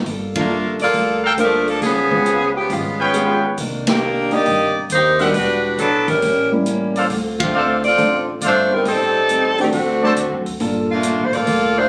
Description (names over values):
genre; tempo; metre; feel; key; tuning
jazz, big band swing; 137 BPM; 4/4; swing 67% on 8ths; G minor; A4 = 440 Hz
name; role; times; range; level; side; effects
upright bass; bass; 0.0-11.9 s; E1 to F#2; -30 LUFS; equal; none
picked old ladder-braced acoustic guitar; accompaniment; 0.1-11.8 s; A2 to A4; -29 LUFS; equal; none
swinging big-band drum kit; drums; 0.1-11.6 s; hi-hat, kick drum, ride cymbal, snare drum; -29 LUFS; equal; none
bright saxophone section; melody; 0.4-11.9 s; D3 to Eb5; -19 LUFS; equal; none
warm grand piano; accompaniment; 0.4-11.8 s; Bb2 to A4; -24 LUFS; equal; none
warm trumpet section; stabs; 1.2-10.1 s; G4 to A5; -22 LUFS; equal; none
room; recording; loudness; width
moderate large studio reverb, RT60 0.9 s; recorded on a phone in the room, club reverb; -18 LUFS; mono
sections
0.1-11.9 A section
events
band accent 0.3, 3.8, 7.3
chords
0.1 Gm9; 1.8 C#7#11; 3.6 Cm9; 5.3 Em9; 6.2 A7b9; 7.1 Dm7; 8.9 Am7b5; 9.7 D7; 10.6 Gm9